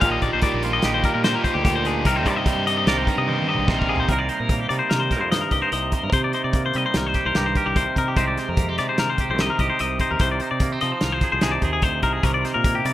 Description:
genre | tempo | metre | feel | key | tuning
math rock and midwest emo | 147 BPM | 5/4 | straight | C minor | A4 = 438 Hz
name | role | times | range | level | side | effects
twangy electric guitar | accompaniment | 0.0-12.9 s | G2 to Bb4 | -26 LUFS | right 5 dB | spring reverb
twangy electric guitar | arpeggios | 0.0-12.9 s | G4 to F5 | -23 LUFS | left 5 dB | spring reverb
biting overdriven guitar | riff | 0.0-4.1 s | Bb2 to G4 | -25 LUFS | right 1 dB | none
fingered electric bass | bass | 0.0-12.9 s | Bb1 to C3 | -27 LUFS | equal | none
loose indie drum kit | drums | 0.0-12.9 s | hi-hat, kick drum, snare drum, toms | -24 LUFS | equal | none
room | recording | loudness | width
little or no reverb | rough home demo mix | -19 LUFS | side -14 dB against mid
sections
0.0-4.1 A section; 4.1-12.9 B section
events
drum fill 3.3-4.1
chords
0.0 Ebmaj9/Bb; 2.1 Cm7; 8.2 Abmaj7/C; 10.2 Fm7/C; 12.2 Cm7

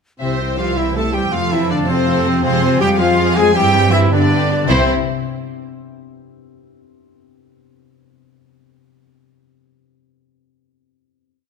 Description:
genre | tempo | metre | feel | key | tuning
cinematic, heroic adventure film score | 107 BPM (dotted quarters) | 6/8 | straight | C major | A4 = 441 Hz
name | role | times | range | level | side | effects
rich symphonic violin section | melody | 0.2-4.9 s | E4 to A5 | -23 LUFS | left 2 dB | none
bright silver concert flute | second line | 0.2-4.9 s | C5 to A5 | -24 LUFS | equal | none
rich studio violin section | second line | 0.2-4.9 s | G4 to A5 | -27 LUFS | equal | none
warm clarinet | second line | 0.2-4.8 s | C4 to C5 | -27 LUFS | left 1 dB | none
rich studio viola section | accompaniment | 0.2-4.9 s | Ab3 to B4 | -26 LUFS | right 1 dB | none
clear trombone section | sustained chords | 0.2-4.8 s | D3 to C4 | -28 LUFS | right 4 dB | none
mellow French horn section | sustained chords | 0.2-4.8 s | C4 to C5 | -21 LUFS | left 5 dB | none
concert harp | arpeggios | 0.2-4.9 s | F2 to E5 | -25 LUFS | left 10 dB | none
clear trumpet | stabs | 0.2-4.8 s | C4 to C5 | -23 LUFS | right 3 dB | none
dark studio cello section | bass | 0.2-4.9 s | C3 to C4 | -22 LUFS | equal | none
warm symphonic double bass section | bass | 0.2-4.9 s | C2 to G2 | -20 LUFS | right 4 dB | none
room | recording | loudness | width
moderate scoring stage reverb, RT60 1.7 s | none | -13 LUFS | side -6 dB against mid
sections
0.2-4.7 theme; 4.7-5.8 final chord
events
none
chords
0.2 C; 1.3 F; 2.4 Fm; 3.6 C/G; 4.1 G; 4.7 C

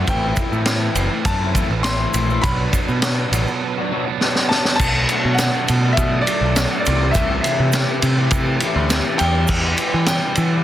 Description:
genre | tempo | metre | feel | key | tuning
indie rock | 102 BPM | 4/4 | straight | unclear | A4 = 442 Hz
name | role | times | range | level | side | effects
bright upright piano | melody | 0.0-10.6 s | D5 to C6 | -25 LUFS | left 1 dB | slapback echo
electric guitar through a small old amp | riff | 0.0-10.6 s | E2 to G4 | -25 LUFS | left 8 dB | none
fuzz guitar | riff | 0.0-10.6 s | A2 to E4 | -25 LUFS | right 8 dB | distortion, ensemble chorus, slapback echo
growling picked electric bass | bass | 0.0-10.6 s | F#1 to E3 | -20 LUFS | equal | overdrive
vintage drum kit | drums | 0.1-10.5 s | crash cymbal, kick drum, ride cymbal, snare drum | -20 LUFS | equal | none
tube shaker | percussion | 0.1-10.5 s | none | -32 LUFS | right 16 dB | none
room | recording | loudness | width
little or no reverb | dense, heavily limited modern master | -16 LUFS | side -12 dB against mid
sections
0.0-4.8 A section; 4.8-10.6 B section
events
drum fill 4.2-4.8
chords
0.1 Am; 2.4 Bm; 4.8 Bm7; 6.9 Am7/C; 9.2 Em

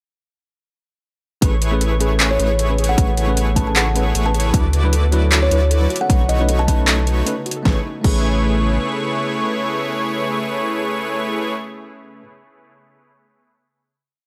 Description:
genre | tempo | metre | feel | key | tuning
future bass | 154 BPM | 4/4 | swing 55% on 16ths, half-time | A major | A4 = 439 Hz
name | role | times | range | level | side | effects
bell-like tine electric piano | accompaniment | 1.4-12.2 s | F#3 to B4 | -29 LUFS | equal | sidechain pumping, dub echo
ethereal airy pad | sustained chords | 3.2-11.5 s | C#3 to G#4 | -35 LUFS | equal | none
airy dreamy lead | arpeggios | 1.4-11.5 s | C#6 to D6 | -31 LUFS | equal | chorus, sidechain pumping
soft round pluck | arpeggios | 1.4-8.2 s | F#4 to B4 | -34 LUFS | equal | none
soft supersaw | riff | 1.4-11.5 s | A3 to D5 | -27 LUFS | equal | sidechain pumping, dub echo
saturated sub bass | bass | 1.4-8.8 s | A1 to D2 | -20 LUFS | equal | sidechain pumping
electronic kick drum | drums | 1.4-8.2 s | none | -19 LUFS | equal | overdrive
pop drum kit | drums | 1.4-8.2 s | crash cymbal, handclaps, hi-hat, snare drum | -23 LUFS | equal | overdrive
kalimba | melody | 2.3-6.8 s | C#5 to A5 | -26 LUFS | equal | vintage 12-bit sampler grit, sidechain pumping
room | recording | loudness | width
light reverb | none | -18 LUFS | mono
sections
1.4-7.7 drop; 7.7-10.8 final chord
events
drop 1.4-7.7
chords
1.4 Amaj9; 4.5 D69; 5.9 B9; 7.7 Amaj9

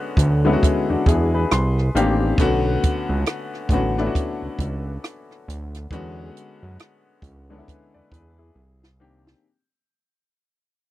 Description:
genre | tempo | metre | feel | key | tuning
R&B, neo-soul | 68 BPM | 4/4 | swing 60% on 16ths | B dorian | A4 = 440 Hz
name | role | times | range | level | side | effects
clear grand piano | accompaniment | 0.0-9.5 s | D3 to C6 | -22 LUFS | left 3 dB | none
fat analog bass | bass | 0.2-9.3 s | A1 to F#2 | -22 LUFS | right 1 dB | none
compact cocktail drum kit | drums | 0.2-9.4 s | hi-hat, kick drum, rim click, snare drum | -21 LUFS | right 1 dB | none
room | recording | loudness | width
little or no reverb | dry, close 1970s-style studio recording | -18 LUFS | side -15 dB against mid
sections
0.0-9.4 A section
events
fade-out 0.0-9.4; grand piano fill 1.1-2.4; drum fill 8.6-9.4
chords
0.0 E13; 1.5 Cm9; 2.4 Bm9; 5.9 E13; 8.6 Cm9

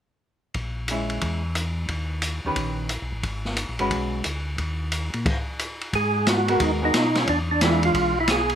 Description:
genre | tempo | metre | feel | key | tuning
soul jazz organ trio | 178 BPM | 4/4 | swing 65% on 8ths | unclear | A4 = 440 Hz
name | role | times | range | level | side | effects
mellow tonewheel organ | bass | 0.5-8.6 s | G1 to B2 | -28 LUFS | left 1 dB | slow rotary speaker
open jazz drum kit | drums | 0.5-8.6 s | crash cymbal, hi-hat, kick drum, ride cymbal, snare drum | -26 LUFS | equal | none
hollow-body jazz guitar | accompaniment | 0.9-4.2, 6.5-8.1 s | D#3 to B4 | -25 LUFS | right 1 dB | none
percussive tonewheel organ | melody | 6.0-8.6 s | C#4 to G#4 | -22 LUFS | right 1 dB | overdrive, chorus vibrato, stopped rotary speaker, plate reverb
room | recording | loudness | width
light reverb | none | -22 LUFS | side -9 dB against mid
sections
0.6-5.9 A section; 5.9-8.6 B section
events
none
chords
0.6 A#m7b5; 1.9 D#7b13; 3.2 G#m11; 4.6 D#5; 5.9 G#m9; 7.3 E7b9

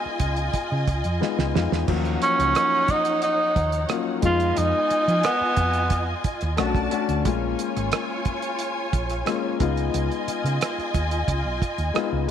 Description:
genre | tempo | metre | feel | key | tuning
lush 1970s-style soul | 89 BPM | 4/4 | straight | Eb minor | A4 = 438 Hz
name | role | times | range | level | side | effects
warm studio string section | second line | 0.0-12.3 s | Eb4 to A5 | -29 LUFS | equal | none
warm concert grand piano | accompaniment | 0.0-12.3 s | F3 to F#4 | -28 LUFS | left 10 dB | none
hollow-body short-scale fingered electric bass | bass | 0.1-12.3 s | Ab1 to F3 | -26 LUFS | right 1 dB | none
cloth-damped thuddy drum kit | drums | 0.2-12.3 s | crash cymbal, hi-hat, kick drum, rim click, snare drum | -27 LUFS | right 4 dB | none
breathy tenor saxophone | melody | 2.2-6.3 s | Cb4 to F4 | -21 LUFS | right 1 dB | none
room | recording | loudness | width
light reverb, small room ambience | 1960s-style stereo | -21 LUFS | side -9 dB against mid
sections
0.0-1.9 A section; 1.9-12.3 A section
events
drum fill 1.2-1.9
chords
0.0 Db9; 1.9 Ebm7; 4.2 Fm7b5; 6.6 Bm7; 7.3 Bbm7; 9.6 Db9

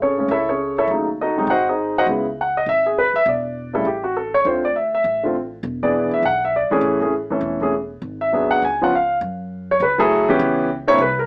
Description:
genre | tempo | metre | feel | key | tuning
jazz | 202 BPM | 4/4 | swing 61% on 8ths | A major | A4 = 440 Hz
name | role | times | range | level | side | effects
warm grand piano | melody | 0.0-11.3 s | C3 to G#5 | -16 LUFS | equal | none
upright bass | bass | 0.0-11.3 s | E1 to F#2 | -32 LUFS | equal | none
room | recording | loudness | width
moderate studio reverb, RT60 0.6 s | small speaker sound | -16 LUFS | side -32 dB against mid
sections
0.0-9.2 A section; 9.2-11.3 B section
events
none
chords
0.0 Amaj7; 0.9 D#m7b5; 1.5 G#7; 2.1 C#m7; 3.3 E7(no3); 3.9 A7(no3); 4.5 Dm7; 5.6 E7; 6.8 Amaj7; 8.0 G#m7b5; 8.6 C#; 9.2 F#m9; 10.4 C#m7b5

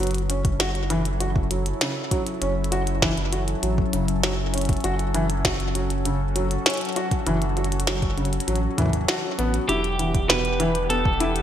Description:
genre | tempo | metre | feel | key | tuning
IDM | 99 BPM | 4/4 | straight | F# phrygian | A4 = 439 Hz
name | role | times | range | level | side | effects
warbly tape-like pad | sustained chords | 0.2-11.4 s | E3 to A4 | -29 LUFS | left 1 dB | chorus, built-in reverb, vintage 12-bit sampler grit
felt-muted upright piano | arpeggios | 0.0-11.3 s | B2 to F#4 | -27 LUFS | equal | vintage 12-bit sampler grit, digital delay
warm sub bass | bass | 0.0-11.4 s | E1 to A1 | -26 LUFS | equal | none
glitchy drum kit | drums | 0.0-11.4 s | hi-hat, snare drum | -25 LUFS | equal | small room ambience, digital delay
electronic kick drum | drums | 0.4-11.2 s | none | -24 LUFS | equal | small room ambience
twelve-string electric guitar | melody | 9.7-11.4 s | G4 to B4 | -24 LUFS | right 1 dB | vintage 12-bit sampler grit
bubbling stepped-filter texture | texture | 9.7-11.4 s | G4 to F#5 | -36 LUFS | right 1 dB | chorus, built-in reverb
room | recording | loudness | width
moderate lush hall reverb, RT60 1.7 s | bright 1980s-style digital production | -21 LUFS | side -10 dB against mid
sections
0.0-11.4 A section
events
none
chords
0.0 F#m7; 9.7 Em7

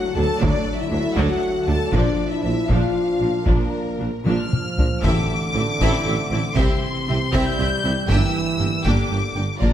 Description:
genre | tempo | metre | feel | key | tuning
cinematic, epic orchestral film score | 79 BPM (dotted quarters) | 6/8 | straight | A phrygian | A4 = 440 Hz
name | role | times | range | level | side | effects
rich symphonic violin section | melody | 0.0-9.7 s | Bb4 to G6 | -28 LUFS | left 4 dB | none
warm symphonic violin section | second line | 0.0-9.7 s | F4 to A5 | -30 LUFS | left 3 dB | none
mellow French horn section | sustained chords | 0.0-9.7 s | E3 to A4 | -27 LUFS | left 4 dB | none
warm trombone section | sustained chords | 0.0-9.7 s | Bb2 to D4 | -28 LUFS | right 3 dB | none
warm symphonic viola section | accompaniment | 0.2-9.7 s | F3 to E4 | -28 LUFS | right 1 dB | none
mellow tuba | bass | 0.2-9.7 s | G1 to D2 | -27 LUFS | right 3 dB | none
rich studio double bass section | bass | 0.2-9.7 s | G1 to D2 | -28 LUFS | right 2 dB | none
rich symphonic cello section | bass | 0.2-9.7 s | D2 to C3 | -28 LUFS | right 2 dB | none
taiko ensemble | drums | 0.4-9.7 s | none | -23 LUFS | left 1 dB | none
timpani | percussion | 5.0-5.8 s | A2 | -28 LUFS | equal | none
room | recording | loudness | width
moderate scoring stage reverb, RT60 1.8 s | none | -18 LUFS | side -10 dB against mid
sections
0.0-5.0 A section; 5.0-9.7 B section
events
drum fill 4.3-5.0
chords
0.0 D; 1.9 Bb; 5.0 Am; 6.6 C; 8.1 Gm

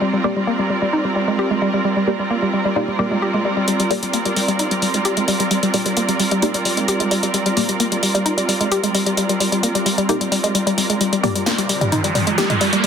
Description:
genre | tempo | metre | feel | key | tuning
driving peak-time techno | 131 BPM | 4/4 | straight | G minor | A4 = 440 Hz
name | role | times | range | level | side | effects
woody wave-folded pluck | riff | 0.0-12.9 s | G3 to G4 | -20 LUFS | left 1 dB | chorus, tape echo
filtered dub chord stab | stabs | 0.0-11.3 s | Bb3 to D5 | -26 LUFS | left 1 dB | phaser, wide subtle chorus, tape echo
muted studio string section | texture | 0.0-12.9 s | G3 to D5 | -22 LUFS | right 3 dB | none
punchy analog drum machine | drums | 3.7-12.9 s | hi-hat, snare drum, toms | -22 LUFS | left 1 dB | overdrive
riser | sound effects | 11.6-12.9 s | none | -21 LUFS | right 2 dB | none
room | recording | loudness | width
light reverb | dense, heavily limited modern master | -16 LUFS | side -7 dB against mid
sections
0.0-3.7 A section; 3.7-12.9 B section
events
filter sweep on synth arpeggio sound 0.0-3.7; build-up 3.7-12.9; riser 11.6-12.9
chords
0.0 Gm

